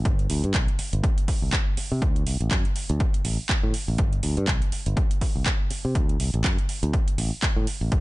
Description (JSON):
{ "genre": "filtered disco house", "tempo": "122 BPM", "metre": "4/4", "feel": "swing 57% on 16ths", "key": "unclear", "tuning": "A4 = 439 Hz", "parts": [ { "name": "modern bright fingered electric bass", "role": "bass", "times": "0.0-8.0 s", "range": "G1 to C3", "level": "-25 LUFS", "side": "equal", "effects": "sidechain pumping, low-pass filter" }, { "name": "electronic kick drum", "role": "drums", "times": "0.1-8.0 s", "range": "none", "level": "-24 LUFS", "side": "equal", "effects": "overdrive" }, { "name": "house drum kit", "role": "drums", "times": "0.1-8.0 s", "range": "handclaps, hi-hat", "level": "-30 LUFS", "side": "right 2 dB", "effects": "none" } ], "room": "little or no reverb", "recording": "nothing above 10.3 kHz", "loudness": "-22 LUFS", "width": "side -19 dB against mid", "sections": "0.0-8.0 A section", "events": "filter sweep on fingered electric bass 0.0-8.0", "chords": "none", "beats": "| 0.05 0.55 1.04 1.53 | 2.02 2.51 3.00 3.50 | 3.99 4.48 4.97 5.46 | 5.96 6.45 6.94 7.43 | 7.92" }